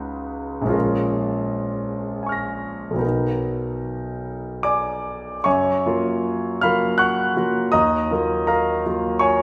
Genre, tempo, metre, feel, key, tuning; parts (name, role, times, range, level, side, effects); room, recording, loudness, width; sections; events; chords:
classical, impressionist solo piano; 72-84 BPM; 3/4; rubato; F# major; A4 = 440 Hz
clear concert grand piano; solo; 0.0-9.4 s; A#1 to A#6; -22 LUFS; equal
wet recital hall reverb, RT60 1.7 s; recorded in a church or concert hall; -22 LUFS; mono
0.0-5.5 A section; 5.5-9.4 B section
0.0 C#9sus4; 0.7 A#m7; 3.0 Bmaj7; 5.5 F#maj7; 7.7 D#madd9